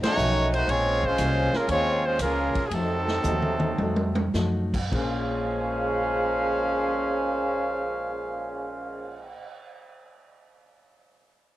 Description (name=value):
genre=jazz, big band swing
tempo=103-121 BPM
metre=4/4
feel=swing 69% on 8ths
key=Bb minor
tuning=A4 = 440 Hz
part: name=clear trumpet section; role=melody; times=0.0-9.3 s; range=Gb3 to F5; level=-26 LUFS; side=right 1 dB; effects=none
part: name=muted trombone section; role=second line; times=0.0-9.3 s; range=Bb2 to Db4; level=-30 LUFS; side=right 1 dB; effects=cassette tape
part: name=picked steel-string acoustic guitar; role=accompaniment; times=0.0-9.5 s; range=F3 to C5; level=-34 LUFS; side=left 2 dB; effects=cassette tape
part: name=upright bass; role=bass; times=0.0-9.3 s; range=Bb1 to Gb2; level=-30 LUFS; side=equal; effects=none
part: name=swinging big-band drum kit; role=drums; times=0.0-9.5 s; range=crash cymbal, cymbal swell, hi-hat, kick drum, ride cymbal, snare drum, toms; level=-32 LUFS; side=equal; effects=cassette tape
part: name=warm concert grand piano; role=accompaniment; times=4.9-9.4 s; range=Bb2 to C5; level=-38 LUFS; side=left 4 dB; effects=cassette tape
room=moderate booth ambience, RT60 0.3 s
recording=home recording on cassette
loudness=-23 LUFS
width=side -15 dB against mid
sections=0.0-4.9 A section; 4.9-9.6 B section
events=band accent 0.0; slowing down 0.7-4.9; drum fill 3.2-4.3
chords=0.0 F7b9; 0.7 Bbm9; 2.7 F7b9; 4.9 Bbm9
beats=0.19 | 0.69 1.19 1.69 2.20 | 2.72 3.25 3.79 4.35 | 4.92 5.51 6.09 6.67 | 7.26 7.84 8.43 9.01